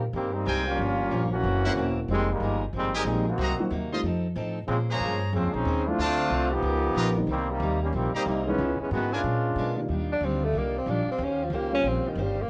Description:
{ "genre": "jazz, big band swing", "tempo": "185 BPM", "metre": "4/4", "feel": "swing 63% on 8ths", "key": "unclear", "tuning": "A4 = 440 Hz", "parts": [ { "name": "brilliant trombone section", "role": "second line", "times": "0.0-9.8 s", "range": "C3 to G4", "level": "-30 LUFS", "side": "equal", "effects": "none" }, { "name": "picked steel-string acoustic guitar", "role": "accompaniment", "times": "0.0-12.4 s", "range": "Gb2 to C5", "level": "-37 LUFS", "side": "equal", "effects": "none" }, { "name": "upright bass", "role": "bass", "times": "0.0-12.5 s", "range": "Fb1 to Cb3", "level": "-32 LUFS", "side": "equal", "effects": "none" }, { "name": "bright trumpet section", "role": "stabs", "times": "0.5-9.2 s", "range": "D4 to C6", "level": "-33 LUFS", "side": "equal", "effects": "none" }, { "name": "dark baby grand piano", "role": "accompaniment", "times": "1.7-12.1 s", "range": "Eb3 to G4", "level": "-33 LUFS", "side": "equal", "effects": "none" }, { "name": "warm saxophone section", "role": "sustained chords", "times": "9.9-12.5 s", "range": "Db3 to F5", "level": "-40 LUFS", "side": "equal", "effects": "none" }, { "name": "mellow tenor saxophone", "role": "melody", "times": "10.1-12.5 s", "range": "Eb3 to D4", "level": "-30 LUFS", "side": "equal", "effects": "none" } ], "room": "moderate studio reverb, RT60 0.6 s", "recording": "worn, warbling old tape, cassette tape, warbly pitch drift, nothing above 10.5 kHz", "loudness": "-27 LUFS", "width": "mono", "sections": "0.0-9.9 A section; 9.9-12.5 B section", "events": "trombone section solo 0.0-9.9; tenor saxophone solo 9.9-12.5", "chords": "0.0 Abmaj9; 0.8 Gm7b5; 1.4 Gb7#11; 2.1 Fm11; 3.4 Cm7b5; 4.0 F7; 4.7 Bbm9; 6.0 Dm7; 6.6 Db13; 7.3 Cm7; 8.6 Dbm7; 9.2 Bb7b9; 9.9 Ebmaj9; 11.2 Eb13" }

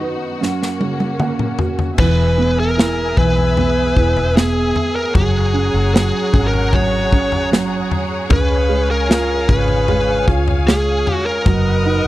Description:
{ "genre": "pop ballad", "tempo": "76 BPM", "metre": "4/4", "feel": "straight", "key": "unclear", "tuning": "A4 = 442 Hz", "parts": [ { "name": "felt-muted upright piano", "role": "accompaniment", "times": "0.0-12.1 s", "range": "F#2 to F#5", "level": "-21 LUFS", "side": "right 4 dB", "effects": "none" }, { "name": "clear studio string section", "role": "sustained chords", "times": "0.0-12.1 s", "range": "F#3 to D#6", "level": "-24 LUFS", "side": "left 1 dB", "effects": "none" }, { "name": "modern studio drum kit", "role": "drums", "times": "0.4-11.6 s", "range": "crash cymbal, kick drum, snare drum, toms", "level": "-18 LUFS", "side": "left 1 dB", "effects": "none" }, { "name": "bluesy overdriven lead guitar", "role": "melody", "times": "2.0-12.1 s", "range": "G#4 to C#5", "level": "-19 LUFS", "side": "left 1 dB", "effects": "distortion" }, { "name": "vintage muted fingered electric bass", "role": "bass", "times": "2.0-12.0 s", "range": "E1 to C#2", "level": "-19 LUFS", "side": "left 1 dB", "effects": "none" } ], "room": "studio reverb", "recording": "dry, close 1970s-style studio recording", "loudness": "-14 LUFS", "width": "side -16 dB against mid", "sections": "0.0-2.0 A section; 2.0-12.1 B section", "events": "drum fill 0.4-2.0; felt piano fill 0.8-2.0", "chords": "0.4 F#; 2.0 E; 5.2 F#add9; 8.3 C#7; 11.5 B/F#" }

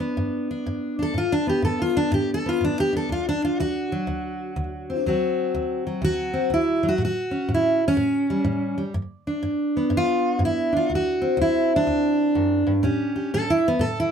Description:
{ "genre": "acoustic country blues, solo or duo", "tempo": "123 BPM", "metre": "4/4", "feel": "swing 66% on 8ths", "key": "D mixolydian", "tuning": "A4 = 440 Hz", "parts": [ { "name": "fingerpicked steel-string acoustic guitar", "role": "solo", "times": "0.0-14.1 s", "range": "D2 to A4", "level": "-21 LUFS", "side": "equal", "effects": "slapback echo" } ], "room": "light reverb", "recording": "close, detailed microphones", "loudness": "-21 LUFS", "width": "side -7 dB against mid", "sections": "0.0-14.1 A section", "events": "steel-string acoustic guitar solo 0.0-14.1", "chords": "0.0 G; 1.2 G#dim; 3.1 D7; 7.0 A7; 8.9 G7; 10.9 D7; 12.8 A7" }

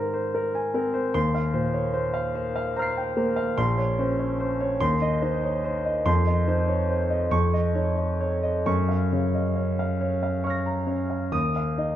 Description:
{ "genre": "classical, impressionist solo piano", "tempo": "43-51 BPM (dotted quarters)", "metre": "6/8", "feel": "rubato", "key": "unclear", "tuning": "A4 = 436 Hz", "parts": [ { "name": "warm concert grand piano", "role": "solo", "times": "0.0-12.0 s", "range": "Bb1 to C7", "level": "-22 LUFS", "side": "equal", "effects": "none" } ], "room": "moderate recital hall reverb, RT60 1.6 s", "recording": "none", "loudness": "-22 LUFS", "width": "side -11 dB against mid", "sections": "0.0-12.0 A section", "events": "none", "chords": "0.0 Abadd9; 1.2 Eb69; 3.6 Bbmadd9; 4.8 Cm/Eb; 6.1 F5; 7.3 Dbadd9/F; 8.7 Gbmaj7; 11.3 Ebsus2" }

